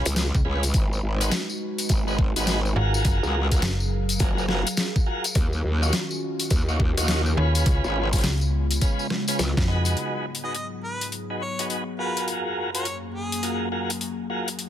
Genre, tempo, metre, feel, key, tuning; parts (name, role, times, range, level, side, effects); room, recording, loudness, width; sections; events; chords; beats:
glitch hop; 104 BPM; 4/4; swing 63% on 16ths; G# dorian; A4 = 440 Hz
tonewheel organ; stabs; 0.0-14.5 s; C#4 to C#5; -30 LUFS; equal; fast rotary speaker, vintage 12-bit sampler grit, sidechain pumping, low-pass filter, dub echo
slap-like FM bass; bass; 0.0-10.0 s; F#1 to E#2; -23 LUFS; equal
growl bass; bass; 0.1-9.5 s; F#1 to D#2; -24 LUFS; equal; chorus, tube saturation
dubstep drum kit; drums; 0.1-14.7 s; hi-hat, rim click, snare drum; -29 LUFS; left 1 dB; overdrive
tambourine; percussion; 0.1-9.9 s; -32 LUFS; left 3 dB
electronic kick drum; drums; 0.3-9.7 s; -22 LUFS; equal; overdrive
warbly tape-like pad; sustained chords; 1.1-14.7 s; D#2 to E#5; -32 LUFS; left 1 dB; chorus, built-in reverb, vintage 12-bit sampler grit, sidechain pumping
clear harmonica; melody; 10.4-13.6 s; G#4 to D#5; -33 LUFS; equal; dub echo
digital ambience; -22 LUFS; side -11 dB against mid
0.0-10.0 A section; 10.0-14.7 B section
drum fill 9.4-10.0; band accent 9.6
0.0 C#7; 0.7 G#m7; 3.0 F#maj9; 5.4 D#m9; 7.7 C#7; 10.0 G#m7; 12.3 F#maj9
0.16 | 0.74 1.32 1.90 2.47 | 3.05 3.63 4.20 4.78 | 5.36 5.93 6.51 7.09 | 7.66 8.24 8.82 9.39 | 9.97 10.55 11.13 11.70 | 12.28 12.86 13.43 14.01 | 14.59